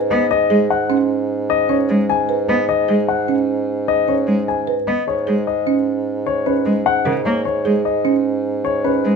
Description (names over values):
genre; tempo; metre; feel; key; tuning
classical, minimalist pattern music; 151 BPM; 6/4; straight; unclear; A4 = 440 Hz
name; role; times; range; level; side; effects
folk marimba with soft mallets; arpeggios; 0.0-9.1 s; C#4 to B4; -21 LUFS; right 9 dB; none
dark bassoon; bass; 0.0-9.2 s; G#2; -22 LUFS; right 1 dB; none
warm grand piano; melody; 0.1-9.1 s; B4 to G#5; -19 LUFS; left 8 dB; none
rich cello; accompaniment; 0.1-9.2 s; C#3 to B3; -20 LUFS; equal; none
room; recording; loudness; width
light reverb; none; -15 LUFS; side -5 dB against mid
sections
0.0-9.2 A section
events
none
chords
0.0 Badd9/G#; 5.1 N.C.